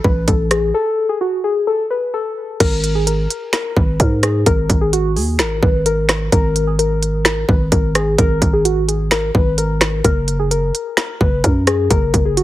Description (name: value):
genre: hip hop, trap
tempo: 129 BPM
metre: 4/4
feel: half-time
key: G# minor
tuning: A4 = 440 Hz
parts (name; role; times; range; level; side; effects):
- muted felt-like synth keys; melody; 0.0-12.4 s; F#4 to B4; -19 LUFS; left 2 dB; chorus, low-pass filter
- growling 808-style bass; bass; 0.0-12.4 s; F#1 to G#2; -18 LUFS; equal; none
- trap drum kit; drums; 0.0-12.4 s; crash cymbal, finger snaps, hi-hat, kick drum, rim click, snare drum; -16 LUFS; equal; none
room: digital ambience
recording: heavily compressed radio sound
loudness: -14 LUFS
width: side -15 dB against mid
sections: 0.0-2.6 A section; 2.6-12.4 B section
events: break 0.7-2.6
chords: 0.0 N.C.; 2.6 G#sus2; 10.0 F#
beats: 0.28 | 0.74 1.21 1.67 2.14 | 2.60 3.07 3.53 4.00 | 4.46 4.93 5.39 5.86 | 6.32 6.79 7.25 7.72 | 8.18 8.65 9.12 9.58 | 10.04 10.51 10.97 11.44 | 11.90 12.37